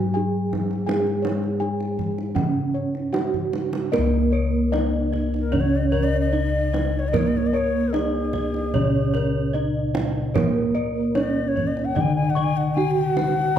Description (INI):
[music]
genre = Javanese gamelan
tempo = 75 BPM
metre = 4/4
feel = straight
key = C# pelog barang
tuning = A4 = 440 Hz
[part]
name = gamelan-type bronze metallophone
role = melody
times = 0.0-13.6 s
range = A#3+20c to G#4-40c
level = -26 LUFS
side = right 4 dB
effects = none
[part]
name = gamelan-type bronze metallophone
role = accompaniment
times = 0.0-13.6 s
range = C#3 to A#3+20c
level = -26 LUFS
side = left 1 dB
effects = none
[part]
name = gamelan-type bossed gongs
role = arpeggios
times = 0.0-13.6 s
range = A#4+20c to C#6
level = -32 LUFS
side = left 4 dB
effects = tape echo
[part]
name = gamelan-type bossed gongs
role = bass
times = 0.0-13.6 s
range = C#2 to A#4+20c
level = -26 LUFS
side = left 2 dB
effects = none
[part]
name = kendang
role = percussion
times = 0.5-13.6 s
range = none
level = -28 LUFS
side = right 4 dB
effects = none
[part]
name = gamelan-type bronze metallophone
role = arpeggios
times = 3.9-13.5 s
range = A#4+20c to F#5+30c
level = -31 LUFS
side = right 5 dB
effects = none
[part]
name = breathy reedy bansuri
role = second line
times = 5.4-13.6 s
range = G#4-46c to G#5-32c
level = -27 LUFS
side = left 6 dB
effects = none
[sound]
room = light reverb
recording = close, detailed microphones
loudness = -20 LUFS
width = side -10 dB against mid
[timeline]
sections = 0.0-3.9 A section; 3.9-13.6 B section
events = drum fill 3.3-3.9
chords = none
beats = 0.15 | 0.87 1.60 2.36 3.13 | 3.92 4.73 5.53 6.33 | 7.14 7.94 8.75 9.55 | 10.36 11.16 11.96 12.77 | 13.57